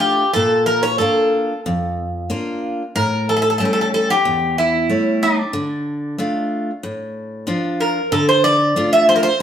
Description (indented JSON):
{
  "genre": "greek folk",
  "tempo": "93 BPM",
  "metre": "4/4",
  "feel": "straight",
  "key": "D harmonic minor",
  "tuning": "A4 = 440 Hz",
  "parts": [
    { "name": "Greek bouzouki", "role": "melody", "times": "0.0-9.4 s", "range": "D4 to E5", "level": "-15 LUFS", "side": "equal", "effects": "none" },
    { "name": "picked steel-string acoustic guitar", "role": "accompaniment", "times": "0.0-9.4 s", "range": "E2 to C#5", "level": "-21 LUFS", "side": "left 1 dB", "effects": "none" }
  ],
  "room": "wet stone room reverb, RT60 0.9 s",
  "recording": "band playing live in one room",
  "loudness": "-15 LUFS",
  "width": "side -9 dB against mid",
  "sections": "0.0-8.1 A section; 8.1-9.4 B section",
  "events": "none",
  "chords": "0.4 Bb; 2.9 A7; 5.5 Dm"
}